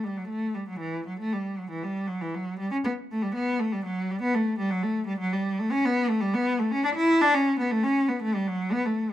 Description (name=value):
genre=classical, baroque-style suite movement for unaccompanied cello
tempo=119 BPM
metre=3/4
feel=rubato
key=unclear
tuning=A4 = 440 Hz
part: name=rich cello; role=solo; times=0.0-9.1 s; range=E3 to E4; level=-24 LUFS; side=equal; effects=none
room=light reverb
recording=minimal, uncompressed stereo recording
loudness=-24 LUFS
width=side -12 dB against mid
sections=0.0-9.1 A section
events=none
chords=none